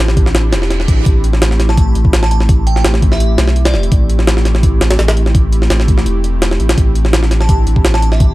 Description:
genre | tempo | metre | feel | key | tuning
drum and bass, jungle | 168 BPM | 4/4 | straight | A minor | A4 = 440 Hz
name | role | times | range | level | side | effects
airy breathy pad | sustained chords | 0.0-8.3 s | A3 to G4 | -21 LUFS | equal | chorus
saturated sub bass | bass | 0.0-8.3 s | E1 to B1 | -13 LUFS | equal | tube saturation
jungle sampler-style drum kit | drums | 0.1-8.3 s | hi-hat, kick drum, snare drum | -13 LUFS | equal | none
reverse cymbal | sound effects | 0.5-1.1 s | none | -28 LUFS | right 6 dB | none
glassy synth bell | melody | 1.7-3.9, 7.4-8.3 s | D5 to A5 | -22 LUFS | right 2 dB | chorus, phaser, tremolo, dub echo
room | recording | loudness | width
little or no reverb | dark, warm production | -10 LUFS | side -18 dB against mid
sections
0.0-8.3 A section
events
reverse cymbal 0.5-1.1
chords
0.0 Cadd9; 1.1 Am7; 6.8 Cadd9

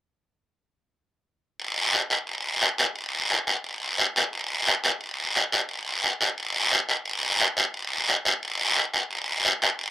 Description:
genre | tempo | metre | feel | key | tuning
latin | 176 BPM | 4/4 | straight | none | none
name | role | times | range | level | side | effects
guiro | percussion | 1.6-9.9 s | none | -22 LUFS | equal | none
room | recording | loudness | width
light reverb | dry, close 1970s-style studio recording | -22 LUFS | side -13 dB against mid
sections
1.6-7.1 A section; 7.1-9.9 B section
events
none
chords
none

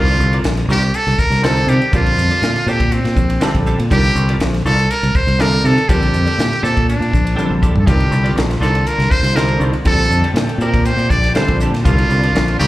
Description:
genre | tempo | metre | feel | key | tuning
electric jazz fusion | 121 BPM | 4/4 | straight | Bb major | A4 = 440 Hz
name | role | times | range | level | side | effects
trumpet with metal mute | melody | 0.0-12.7 s | C4 to D5 | -18 LUFS | right 1 dB | none
clear grand piano | accompaniment | 0.0-12.5 s | D3 to C5 | -23 LUFS | equal | slapback echo
clean electric guitar | stabs | 0.0-12.7 s | C4 to D5 | -26 LUFS | right 2 dB | ensemble chorus, slapback echo
fingered electric bass | bass | 0.0-12.7 s | Bb1 to C3 | -16 LUFS | equal | none
crisp fusion drum kit | drums | 0.1-12.7 s | hi-hat, kick drum, ride cymbal, snare drum, toms | -19 LUFS | equal | none
muted studio string section | sustained chords | 7.9-12.7 s | C3 to G4 | -27 LUFS | left 1 dB | none
room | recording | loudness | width
small room ambience | live gig heard through the venue's PA, club ambience | -12 LUFS | side -16 dB against mid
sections
0.0-12.7 A section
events
drum fill 7.4-7.9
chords
0.0 Cm11; 1.9 Bbmaj13; 3.9 Cm11; 5.9 Bbmaj13; 7.9 Cm11; 9.9 Bbmaj13; 11.9 Cm11

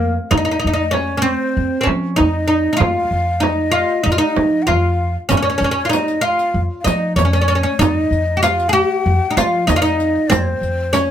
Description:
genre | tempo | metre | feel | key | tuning
Arabic maqam ensemble | 96 BPM | 4/4 | straight | F maqam bayati | A4 = 440 Hz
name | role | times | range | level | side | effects
oud | melody | 0.0-11.1 s | Bb3 to Ab4 | -17 LUFS | equal | none
breathy ney | second line | 0.0-11.1 s | Bb4 to Ab5 | -22 LUFS | left 3 dB | none
upright bass | bass | 0.0-11.1 s | F2 to F3 | -20 LUFS | equal | none
frame drum | percussion | 0.3-11.1 s | none | -21 LUFS | right 5 dB | none
riq | percussion | 5.3-11.1 s | none | -28 LUFS | left 6 dB | none
room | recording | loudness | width
light reverb | close, detailed microphones | -14 LUFS | side -10 dB against mid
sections
0.0-11.1 A section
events
none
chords
none

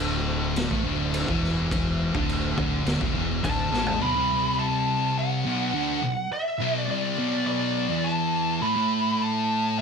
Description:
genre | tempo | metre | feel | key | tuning
stoner and doom metal | 104 BPM | 4/4 | straight | B dorian | A4 = 440 Hz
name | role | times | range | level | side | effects
high-gain distorted guitar | riff | 0.0-9.8 s | B1 to A3 | -30 LUFS | left 4 dB | distortion
thick fuzz guitar | riff | 0.0-9.8 s | B1 to A3 | -30 LUFS | left 10 dB | distortion
thick fuzz guitar | riff | 0.0-9.8 s | B1 to A3 | -29 LUFS | right 11 dB | distortion
fuzz fingered electric bass | bass | 0.0-4.0 s | D1 to A1 | -31 LUFS | equal | overdrive
raw garage drum kit | drums | 0.6-4.0 s | crash cymbal, kick drum, snare drum, toms | -30 LUFS | equal | none
fuzz lead guitar | melody | 3.4-9.8 s | D5 to B5 | -26 LUFS | equal | distortion, slapback echo
room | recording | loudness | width
light reverb | none | -23 LUFS | side -6 dB against mid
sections
0.0-4.0 A section; 4.0-9.8 B section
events
drum fill 3.7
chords
0.0 D5; 4.0 Bm; 8.6 A5

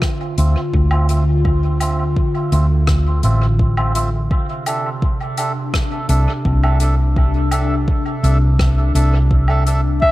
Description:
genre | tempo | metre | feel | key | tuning
ambient dub | 84 BPM | 4/4 | straight | unclear | A4 = 440 Hz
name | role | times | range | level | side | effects
airy breathy pad | sustained chords | 0.0-10.1 s | C3 to F4 | -23 LUFS | equal | chorus
electronic kick drum | drums | 0.0-10.1 s | none | -18 LUFS | equal | none
soft-mallet drum kit | drums | 0.0-9.8 s | hi-hat, rim click, woodblock | -28 LUFS | equal | dub echo
melodica | stabs | 0.4-9.8 s | C4 to E5 | -25 LUFS | right 2 dB | low-pass filter, dub echo
hollow-body short-scale fingered electric bass | bass | 0.4-10.0 s | A1 to D2 | -15 LUFS | equal | none
warm clarinet | melody | 10.0-10.1 s | E5 | -11 LUFS | left 1 dB | none
room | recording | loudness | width
small room ambience | echo-heavy mix | -14 LUFS | side -17 dB against mid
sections
0.0-10.1 A section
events
filter sweep on melodica 0.0-10.1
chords
0.0 Dm9; 4.3 C69

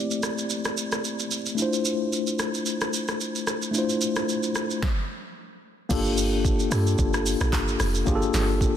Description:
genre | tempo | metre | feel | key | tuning
amapiano | 111 BPM | 4/4 | swing 55% on 16ths | G dorian | A4 = 440 Hz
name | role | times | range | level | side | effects
mellow tine electric piano | accompaniment | 0.0-8.8 s | A3 to D5 | -26 LUFS | left 2 dB | medium stereo tremolo, low-pass filter
deep house drum kit | drums | 0.1-8.8 s | crash cymbal, handclaps, hi-hat, kick drum, rim click, shaker, snare drum | -27 LUFS | right 1 dB | soft clipping on snare
deep log drum bass | bass | 5.9-8.8 s | F1 to G2 | -26 LUFS | right 1 dB | none
room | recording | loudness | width
light reverb | dense, heavily limited modern master | -23 LUFS | side -10 dB against mid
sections
0.0-5.9 A section; 5.9-8.8 B section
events
filter sweep on tine electric piano 0.0-5.9; stop 4.8-5.9; drop 5.9-8.8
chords
0.0 Am7; 1.6 Dm9/A; 5.9 Gm7

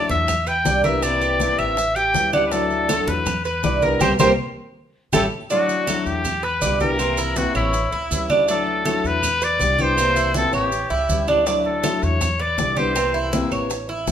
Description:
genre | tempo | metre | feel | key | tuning
latin, Cuban son and guajira | 161 BPM | 4/4 | straight | D major | A4 = 440 Hz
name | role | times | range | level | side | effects
clear trumpet | melody | 0.0-13.3 s | E4 to G5 | -22 LUFS | left 1 dB | none
fingerpicked steel-string acoustic guitar | accompaniment | 0.0-14.1 s | C3 to F#4 | -25 LUFS | left 3 dB | none
Cuban tres | arpeggios | 0.0-14.1 s | C4 to E5 | -22 LUFS | right 3 dB | none
upright bass | bass | 0.0-14.1 s | A1 to E2 | -27 LUFS | equal | none
congas | percussion | 0.1-14.1 s | none | -30 LUFS | right 1 dB | none
maracas | percussion | 0.1-14.1 s | none | -32 LUFS | right 5 dB | none
bongos | percussion | 0.3-5.2, 11.5-14.1 s | none | -29 LUFS | left 8 dB | none
claves | percussion | 0.3-13.7 s | none | -33 LUFS | right 6 dB | none
room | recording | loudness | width
moderate large studio reverb, RT60 1.0 s | minimal, uncompressed stereo recording, lossy compression artefacts | -18 LUFS | side -9 dB against mid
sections
0.0-5.5 A section; 5.5-14.1 A section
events
band accent 4.0-5.5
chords
0.3 Em7; 1.0 C7; 1.8 A7; 2.5 Dadd9; 3.3 Em7; 4.0 C5; 4.8 A7; 5.5 Dadd9; 6.2 Em7; 7.0 C7; 7.7 A7; 8.5 Dadd9; 9.2 Em7; 10.0 C7; 10.7 A7; 11.5 Dadd9; 12.2 Em7; 13.0 C7

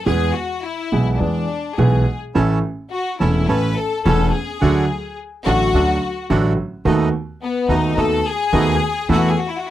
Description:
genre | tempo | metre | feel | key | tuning
tango | 107 BPM | 4/4 | rubato | A major | A4 = 440 Hz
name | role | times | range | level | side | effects
bright studio violin section | second line | 0.0-9.7 s | B3 to B4 | -22 LUFS | left 5 dB | none
warm concert grand piano | accompaniment | 0.1-9.3 s | E1 to A4 | -18 LUFS | right 2 dB | none
upright bass | bass | 0.1-9.3 s | E1 to E2 | -22 LUFS | equal | none
bandoneon | stabs | 2.3-9.3 s | A3 to A4 | -24 LUFS | right 3 dB | none
room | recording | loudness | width
light reverb | dry, close 1970s-style studio recording | -16 LUFS | side -13 dB against mid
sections
0.0-9.7 A section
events
violin section solo 0.0-9.7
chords
0.1 E; 2.4 A; 4.6 D; 6.9 B7/D#; 9.1 Esus4

